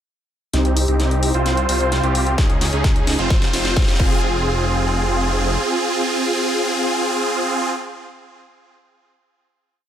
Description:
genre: EDM, festival progressive house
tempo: 130 BPM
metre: 4/4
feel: straight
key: F minor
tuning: A4 = 441 Hz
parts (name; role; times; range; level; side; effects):
- supersaw chords; riff; 0.5-7.7 s; C4 to C5; -19 LUFS; right 1 dB; phaser, sidechain pumping, low-pass filter, digital delay
- wide detuned saw bass; bass; 0.5-5.6 s; F1 to Db2; -21 LUFS; equal; chorus, sidechain pumping
- big-room dance drum kit; drums; 0.5-4.0 s; hi-hat, snare drum; -25 LUFS; left 1 dB; high-pass filter on snare, high-pass filter on hats
- electronic kick drum; drums; 2.4-4.1 s; none; -17 LUFS; equal; none
room: light reverb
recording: none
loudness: -16 LUFS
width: side -10 dB against mid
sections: 0.5-4.2 build; 4.2-7.9 final hit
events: build-up 0.5-4.2; drum fill 0.5-4.2; filter sweep on supersaw synth 0.5-4.2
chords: 0.5 Cm; 1.5 F5/C; 2.4 Dbsus2; 3.3 F5; 4.0 Fm

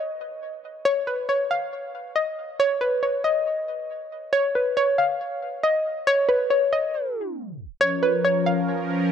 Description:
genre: hip hop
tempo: 138 BPM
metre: 4/4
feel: half-time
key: Bb phrygian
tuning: A4 = 442 Hz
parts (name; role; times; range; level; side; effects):
- soft round pluck; melody; 0.0-9.1 s; Cb5 to F5; -22 LUFS; equal; chorus, ping-pong delay
- sweeping resonant pad; sustained chords; 7.8-9.1 s; F3 to Bb4; -24 LUFS; left 2 dB; chorus
room: moderate plate reverb, RT60 3.5 s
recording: dark, warm production, tape stop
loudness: -21 LUFS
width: side -8 dB against mid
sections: 0.0-7.8 A section; 7.8-9.1 B section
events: tape stop 6.9-7.8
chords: 0.0 N.C.; 7.8 Bbm

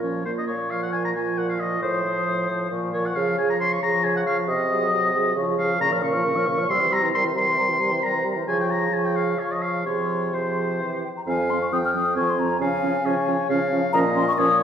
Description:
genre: quick classical-period movement for wind quintet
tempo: 135 BPM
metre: 3/4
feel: straight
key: Bb minor, F minor from 5.8 s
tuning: A4 = 439 Hz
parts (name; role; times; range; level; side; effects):
- mellow hollow concert flute; melody; 0.0-14.6 s; Bb4 to F6; -27 LUFS; left 4 dB; none
- warm oboe; second line; 0.0-14.6 s; C5 to Db6; -25 LUFS; left 1 dB; none
- mellow clarinet; accompaniment; 0.0-14.6 s; C4 to Db5; -28 LUFS; right 4 dB; none
- warm French horn; accompaniment; 0.0-14.5 s; Db3 to Bb3; -30 LUFS; right 1 dB; none
- warm bassoon; bass; 0.0-14.6 s; F2 to Db3; -27 LUFS; right 1 dB; none
room: wet recital hall reverb, RT60 1.6 s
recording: heard from further back in the room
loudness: -20 LUFS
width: side -8 dB against mid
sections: 0.5-11.3 A section; 11.3-14.6 B section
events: none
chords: 0.5 Bbm; 1.8 F7/A; 2.7 Bbm; 3.2 Db; 4.5 Ab7/C; 5.4 Db; 5.8 Bbm; 6.7 C; 7.1 C7; 8.5 Db; 9.9 Fm/C; 10.8 C; 11.3 Fm; 12.6 Db; 13.9 Bbm

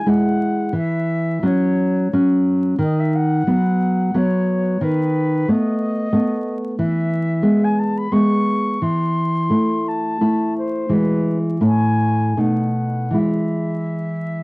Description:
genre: romantic duo for flute and classical guitar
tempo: 73-92 BPM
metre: 3/4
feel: rubato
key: E major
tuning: A4 = 441 Hz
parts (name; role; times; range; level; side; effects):
- mellow concert flute; melody; 0.0-14.4 s; B4 to C#6; -25 LUFS; left 2 dB; cassette tape
- nylon-string guitar; accompaniment; 0.1-14.4 s; A2 to E4; -17 LUFS; equal; cassette tape
room: moderate studio ambience, RT60 0.5 s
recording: home recording on cassette, vinyl crackle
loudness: -16 LUFS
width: side -26 dB against mid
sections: 0.0-14.4 A section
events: none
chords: 0.0 E; 0.7 F#5/E; 2.8 B/D#; 4.8 B7/D#; 6.8 E; 8.8 Am/E; 10.9 E; 11.6 A5; 12.4 B7; 13.2 E

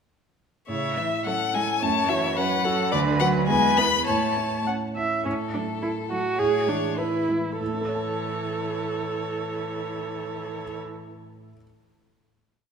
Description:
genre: quick classical-period movement for piano quartet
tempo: 94-110 BPM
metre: 2/4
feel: rubato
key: A major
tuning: A4 = 441 Hz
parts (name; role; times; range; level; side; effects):
- rich violin; melody; 0.7-10.8 s; A4 to B5; -27 LUFS; left 8 dB; none
- rich cello; second line; 0.7-10.8 s; C#3 to B3; -31 LUFS; right 4 dB; none
- dark baby grand piano; accompaniment; 0.7-11.6 s; D2 to A5; -30 LUFS; right 2 dB; none
- rich viola; accompaniment; 0.7-10.8 s; C#4 to F#5; -27 LUFS; right 3 dB; none
room: wet scoring stage reverb, RT60 1.9 s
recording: minimal, uncompressed stereo recording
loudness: -23 LUFS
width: side -6 dB against mid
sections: 0.7-5.3 A section; 5.3-7.6 coda; 7.6-10.0 final chord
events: slowing down 4.7-7.6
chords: 0.7 A; 1.8 F#5; 2.9 Bm/D; 3.5 E; 4.1 A; 5.3 A5; 6.4 E/A; 7.6 A

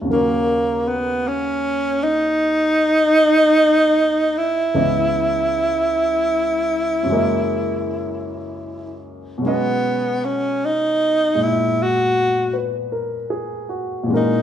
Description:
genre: jazz ballad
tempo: 51 BPM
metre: 4/4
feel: swing 67% on 8ths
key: unclear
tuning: A4 = 440 Hz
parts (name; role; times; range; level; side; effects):
- warm baby grand piano; accompaniment; 0.0-14.4 s; C#2 to D#5; -23 LUFS; left 1 dB; none
- warm tenor saxophone; melody; 0.1-14.4 s; A#3 to F#4; -17 LUFS; equal; none
room: moderate large studio reverb, RT60 1.2 s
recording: minimal, uncompressed stereo recording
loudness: -16 LUFS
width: side -9 dB against mid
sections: 0.0-14.4 A section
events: none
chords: 0.1 D#m7; 4.7 C#m9; 7.1 F#13; 9.4 B69

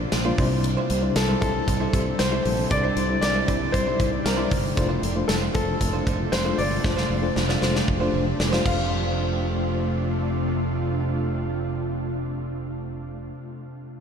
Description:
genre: 1980s-style pop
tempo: 116 BPM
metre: 4/4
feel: straight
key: F major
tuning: A4 = 437 Hz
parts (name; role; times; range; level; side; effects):
- FM electric piano with tremolo; accompaniment; 0.0-14.0 s; F2 to D5; -29 LUFS; left 4 dB; none
- ethereal airy pad; sustained chords; 0.0-13.3 s; C3 to G4; -29 LUFS; right 1 dB; ensemble chorus, built-in reverb
- direct-recorded clean electric guitar; riff; 0.0-13.4 s; G3 to C5; -34 LUFS; right 6 dB; none
- fingered electric bass; bass; 0.0-13.3 s; F1 to C2; -28 LUFS; right 1 dB; none
- big rock drum kit; drums; 0.1-8.8 s; crash cymbal, hi-hat, kick drum, snare drum, tambourine; -26 LUFS; equal; none
- clear concert grand piano; melody; 1.2-13.3 s; A4 to F5; -29 LUFS; left 1 dB; ping-pong delay
room: wet huge ambient reverb, RT60 8.0 s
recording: dreamy mix soaked in reverb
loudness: -21 LUFS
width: side -7 dB against mid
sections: 0.0-8.9 A section; 8.9-13.1 B section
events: drum fill 6.8-8.9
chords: 0.4 Cadd9; 4.8 F6

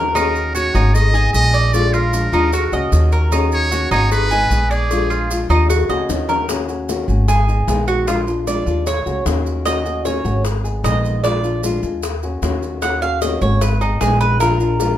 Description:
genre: latin, Cuban son and guajira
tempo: 152 BPM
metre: 4/4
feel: straight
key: Eb minor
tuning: A4 = 438 Hz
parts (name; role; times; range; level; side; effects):
- flamenco guitar; accompaniment; 0.0-15.0 s; Eb3 to Ab4; -23 LUFS; left 3 dB; none
- Cuban tres; arpeggios; 0.0-15.0 s; Eb4 to Gb5; -20 LUFS; right 2 dB; none
- upright bass; bass; 0.0-14.9 s; Ab1 to Eb2; -18 LUFS; equal; none
- trumpet with metal mute; melody; 0.2-5.5 s; Ab4 to Eb5; -21 LUFS; right 1 dB; none
- cowbell and bongos; percussion; 0.2-15.0 s; none; -26 LUFS; left 6 dB; none
- maracas; percussion; 0.2-15.0 s; none; -33 LUFS; right 5 dB; none
room: light reverb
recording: minimal, uncompressed stereo recording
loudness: -15 LUFS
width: side -12 dB against mid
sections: 0.0-6.5 A section; 6.5-15.0 B section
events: drum fill 0.0, 5.7-6.5; Cuban tres solo 6.5-15.0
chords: 0.0 Ebm7; 0.9 Abm; 1.7 Bb7; 2.5 Ebm7; 4.1 Abm; 4.9 Bb7; 5.7 Ebm7; 7.3 Abm; 8.1 Bb7; 8.9 Ebm7; 10.5 Abm; 11.2 Bb7; 12.0 Ebm7; 13.6 Abm; 14.4 Bb7

